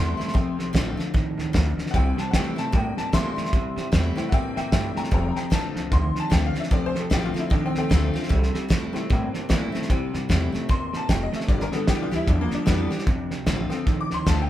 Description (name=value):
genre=rockabilly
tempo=151 BPM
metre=4/4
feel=swing 60% on 8ths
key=C mixolydian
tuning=A4 = 440 Hz
part: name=picked steel-string acoustic guitar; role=accompaniment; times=0.0-14.5 s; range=F2 to G4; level=-33 LUFS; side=left 3 dB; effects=none
part: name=tack piano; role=accompaniment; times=0.0-14.5 s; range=D3 to D6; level=-29 LUFS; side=left 2 dB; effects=none
part: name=electric guitar through a small old amp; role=riff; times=0.0-14.5 s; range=F2 to Bb3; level=-29 LUFS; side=right 1 dB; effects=spring reverb
part: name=upright bass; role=bass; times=0.0-14.5 s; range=F1 to Bb2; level=-27 LUFS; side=equal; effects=none
part: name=cloth-damped thuddy drum kit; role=drums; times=0.2-14.4 s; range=hi-hat, kick drum, snare drum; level=-24 LUFS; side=equal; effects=none
room=moderate studio reverb, RT60 0.6 s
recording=band playing live in one room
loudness=-21 LUFS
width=side -13 dB against mid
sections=0.0-14.5 A section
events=honky-tonk piano solo 0.0-14.5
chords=0.3 F; 1.9 C; 5.1 F; 8.3 C; 11.5 G; 13.1 F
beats=| 0.34 0.74 1.14 1.54 | 1.94 2.33 2.73 3.13 | 3.53 3.93 4.33 4.72 | 5.12 5.52 5.92 6.32 | 6.71 7.11 7.51 7.91 | 8.31 8.70 9.10 9.50 | 9.90 10.29 10.69 11.09 | 11.49 11.88 12.28 12.68 | 13.08 13.47 13.87 14.27